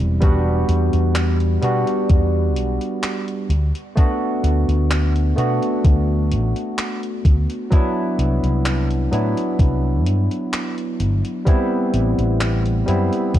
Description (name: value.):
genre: vaporwave.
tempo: 64 BPM.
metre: 4/4.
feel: straight.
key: unclear.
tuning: A4 = 440 Hz.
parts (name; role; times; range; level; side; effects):
barky tine electric piano; accompaniment; 0.0-13.4 s; F#3 to F#4; -21 LUFS; equal; lush chorus, tape echo.
mellow fretless electric bass; bass; 0.0-13.4 s; E1 to B2; -18 LUFS; equal; none.
gated 80s digital drum machine; drums; 0.0-13.4 s; handclaps, hi-hat; -28 LUFS; equal; gated reverb, vintage 12-bit sampler grit.
electronic kick drum; drums; 0.2-13.4 s; none; -14 LUFS; equal; vintage 12-bit sampler grit.
room: little or no reverb.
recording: dark, warm production.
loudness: -17 LUFS.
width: side -12 dB against mid.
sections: 0.0-13.4 A section.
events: none.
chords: 0.2 Em9; 3.5 Bm7; 7.7 Cmaj9#11; 11.5 Am7.